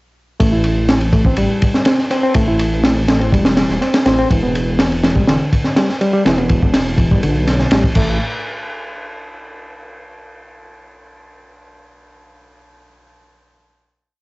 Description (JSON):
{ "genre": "breakbeat, breaks", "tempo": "123 BPM", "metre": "4/4", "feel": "straight", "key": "A minor", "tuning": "A4 = 442 Hz", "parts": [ { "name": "barky reed electric piano", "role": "riff", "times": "0.4-8.2 s", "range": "D3 to E4", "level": "-18 LUFS", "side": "equal", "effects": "tube saturation, cassette tape, analog delay" }, { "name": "dark detuned saw bass", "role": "bass", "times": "0.4-8.2 s", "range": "E1 to B1", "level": "-18 LUFS", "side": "equal", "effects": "none" }, { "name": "crunchy breakbeat drum kit", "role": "drums", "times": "0.4-8.1 s", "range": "crash cymbal, kick drum, ride cymbal, snare drum", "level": "-16 LUFS", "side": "equal", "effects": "none" } ], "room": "light reverb", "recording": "home recording on cassette, nothing above 7.9 kHz, faint mains hum", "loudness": "-12 LUFS", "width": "side -22 dB against mid", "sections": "0.4-8.2 drop; 8.2-10.2 final hit", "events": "drop 0.4-8.2", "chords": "0.4 Am7; 4.3 Em7; 8.0 N.C.", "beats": "| 0.40 0.89 1.38 1.86 | 2.35 2.84 3.33 3.81 | 4.30 4.79 5.28 5.77 | 6.25 6.74 7.23 7.72" }